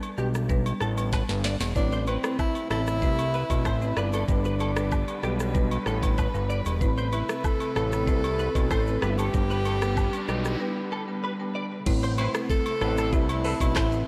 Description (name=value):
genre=afrobeats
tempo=95 BPM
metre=4/4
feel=straight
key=A minor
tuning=A4 = 440 Hz
part: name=breathy tenor saxophone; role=melody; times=0.0-14.1 s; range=C4 to A4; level=-33 LUFS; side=equal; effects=delay
part: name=afro-pop drum kit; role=drums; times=0.0-14.1 s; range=crash cymbal, handclaps, hi-hat, kick drum, rim click, shaker, snare drum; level=-31 LUFS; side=equal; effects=none
part: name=agogo bells and woodblock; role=percussion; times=0.0-13.9 s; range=none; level=-40 LUFS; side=equal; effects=none
part: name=marimba with medium mallets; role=accompaniment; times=0.2-14.1 s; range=G3 to B4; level=-34 LUFS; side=equal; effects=none
part: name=direct-recorded clean electric guitar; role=riff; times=0.2-13.9 s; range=G4 to D5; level=-39 LUFS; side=equal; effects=ensemble chorus, delay
part: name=fat analog bass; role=bass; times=0.2-14.0 s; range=E1 to C2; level=-30 LUFS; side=equal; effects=none
part: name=warm studio string section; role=sustained chords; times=1.8-14.1 s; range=C3 to B4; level=-39 LUFS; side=equal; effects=none
part: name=riser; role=sound effects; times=9.3-10.6 s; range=none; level=-44 LUFS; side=equal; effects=none
part: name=warm horn section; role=second line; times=12.2-13.6 s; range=E3 to C5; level=-37 LUFS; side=equal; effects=delay
room=moderate lush hall reverb, RT60 2.8 s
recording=dreamy mix soaked in reverb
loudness=-26 LUFS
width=mono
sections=0.0-1.8 A section; 1.8-11.9 B section; 11.9-14.1 C section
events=drum fill 1.1-1.8; break 10.6-11.9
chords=0.0 G; 1.8 Amadd9; 4.0 G; 6.8 Amadd9; 9.0 G; 11.9 Amadd9